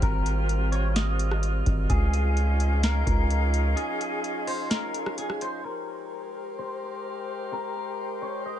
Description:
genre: hip hop, atmospheric cloud-rap.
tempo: 128 BPM.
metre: 4/4.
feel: half-time.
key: Ab major.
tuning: A4 = 441 Hz.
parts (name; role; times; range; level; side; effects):
clean electric guitar; melody; 0.0-8.6 s; Ab4 to Eb5; -34 LUFS; equal; ensemble chorus, low-pass filter, dub echo.
bright flute section; sustained chords; 0.0-8.6 s; Db4 to F5; -33 LUFS; left 2 dB; sidechain pumping, low-pass filter.
long sustained 808-style bass; bass; 0.0-3.7 s; Ab1 to Db2; -24 LUFS; equal; none.
booming analog drum machine; drums; 0.0-5.5 s; hi-hat, kick drum, rim click, snare drum; -27 LUFS; equal; none.
drifting glass-harmonics texture; texture; 0.0-8.6 s; F3 to Db5; -38 LUFS; right 3 dB; chorus, built-in reverb.
room: little or no reverb.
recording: echo-heavy mix, nothing above 10.8 kHz.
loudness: -24 LUFS.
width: side -11 dB against mid.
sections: 0.0-5.6 A section; 5.6-8.6 B section.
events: break 3.8-5.6; filter sweep 5.6-8.6.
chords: 0.0 Abmaj9; 1.9 Dbmaj9; 5.6 Abmaj9.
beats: | 0.02 0.49 0.96 1.43 | 1.90 2.37 2.83 3.30 | 3.77 4.24 4.71 5.18 | 5.65 6.12 6.58 7.05 | 7.52 7.99 8.46.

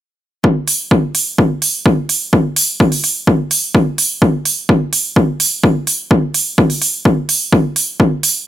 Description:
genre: EDM, festival progressive house.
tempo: 127 BPM.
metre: 4/4.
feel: straight.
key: none.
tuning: none.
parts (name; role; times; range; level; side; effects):
electronic kick drum; drums; 0.4-8.1 s; none; -12 LUFS; left 1 dB; high-pass filter on kick, high-pass filter on room.
electronic hi-hat; drums; 0.7-8.3 s; none; -14 LUFS; right 3 dB; none.
room: little or no reverb.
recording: none.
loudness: -12 LUFS.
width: side -12 dB against mid.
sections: 0.4-8.5 A section.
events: none.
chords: none.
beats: | 0.44 0.91 1.38 1.86 | 2.33 2.80 3.27 3.75 | 4.22 4.69 5.16 5.64 | 6.11 6.58 7.05 7.53 | 8.00.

